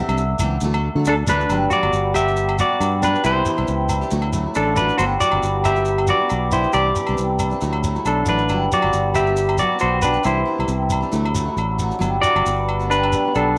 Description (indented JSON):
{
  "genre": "highlife guitar band",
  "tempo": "137 BPM",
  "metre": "4/4",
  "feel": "swing 55% on 16ths",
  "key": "G major",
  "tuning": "A4 = 437 Hz",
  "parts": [
    { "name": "picked steel-string acoustic guitar", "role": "accompaniment", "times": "0.0-13.4 s", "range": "E3 to G4", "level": "-32 LUFS", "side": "equal", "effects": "none" },
    { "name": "cimbalom", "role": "arpeggios", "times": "0.0-13.6 s", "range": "E3 to F#5", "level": "-27 LUFS", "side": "equal", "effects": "tape echo" },
    { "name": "fingered electric bass", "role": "bass", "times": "0.1-13.6 s", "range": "G1 to D3", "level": "-25 LUFS", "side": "equal", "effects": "none" },
    { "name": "agogo bells", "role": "percussion", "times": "0.1-13.5 s", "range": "none", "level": "-32 LUFS", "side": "equal", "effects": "none" },
    { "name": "shekere", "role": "percussion", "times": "0.1-13.5 s", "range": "none", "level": "-30 LUFS", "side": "equal", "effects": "none" },
    { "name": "semi-hollow electric guitar", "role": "melody", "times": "1.1-13.6 s", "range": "D4 to E5", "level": "-22 LUFS", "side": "equal", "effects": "none" }
  ],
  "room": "moderate spring reverb, RT60 1.2 s, studio reverb",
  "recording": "none",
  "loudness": "-19 LUFS",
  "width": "mono",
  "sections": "0.0-1.5 A section; 1.5-13.6 B section",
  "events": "hammered dulcimer solo 0.0-1.5",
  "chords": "0.0 Cadd9; 0.6 Dadd9; 1.5 Gmaj7; 3.2 Cadd9; 4.1 Dadd9; 5.0 Gmaj7; 6.7 Cadd9; 7.6 Dadd9; 8.5 Gmaj7; 10.3 Cadd9; 11.1 Dadd9; 12.0 Gmaj7"
}